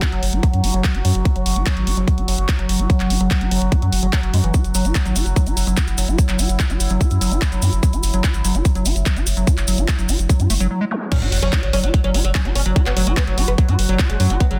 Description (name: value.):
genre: psychedelic trance.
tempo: 146 BPM.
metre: 4/4.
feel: straight.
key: unclear.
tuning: A4 = 441 Hz.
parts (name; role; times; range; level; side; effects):
overtone-sweeping drone; sustained chords; 0.0-14.6 s; F#3 to F#4; -30 LUFS; equal; chorus, built-in reverb, phaser, sidechain pumping.
liquid acid bass; riff; 0.0-14.6 s; E3 to F#4; -28 LUFS; equal; chorus, sidechain pumping, tape echo.
electronic kick drum; drums; 0.0-14.5 s; none; -19 LUFS; equal; none.
garage drum kit; drums; 0.0-14.6 s; crash cymbal, handclaps, hi-hat; -28 LUFS; equal; none.
round analog bass; bass; 0.1-14.6 s; F#1 to F#2; -22 LUFS; equal; none.
cabasa; percussion; 4.5-10.7 s; none; -31 LUFS; equal; none.
zap and sub drop; sound effects; 10.9-12.8 s; none; -31 LUFS; equal; none.
oud; melody; 11.1-14.5 s; C#3 to C#4; -28 LUFS; equal; phaser, sidechain pumping, digital delay.
room: light reverb, digital ambience.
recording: dense, heavily limited modern master.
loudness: -18 LUFS.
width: mono.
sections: 0.0-11.1 A section; 11.1-14.6 B section.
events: filter sweep on acid bass 0.0-11.1; break 10.7-11.1; drop 11.1-14.6; impact 11.1-12.8.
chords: 0.0 F#7(no3); 11.1 F#5.